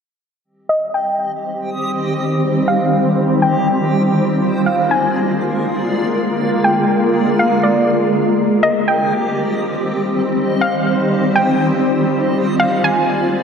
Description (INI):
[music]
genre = hip hop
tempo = 121 BPM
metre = 4/4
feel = half-time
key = C minor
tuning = A4 = 441 Hz
[part]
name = shimmering ambient pad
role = sustained chords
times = 1.3-13.4 s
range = D3 to C5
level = -16 LUFS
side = equal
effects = chorus, built-in reverb, low-pass filter
[part]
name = backwards swelling texture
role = texture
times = 1.3-13.4 s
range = Bb3 to Eb5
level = -26 LUFS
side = right 1 dB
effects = built-in reverb
[part]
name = soft round pluck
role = melody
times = 0.7-13.4 s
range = D5 to Ab5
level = -18 LUFS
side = equal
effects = chorus, low-pass filter, ping-pong delay
[sound]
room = wet lush hall reverb, RT60 2.7 s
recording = dreamy mix soaked in reverb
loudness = -14 LUFS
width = side -6 dB against mid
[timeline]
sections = 0.4-13.4 A section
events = filter sweep 0.4-13.4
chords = 0.4 Cm; 4.4 Bb7; 8.4 Cm; 12.3 Bb7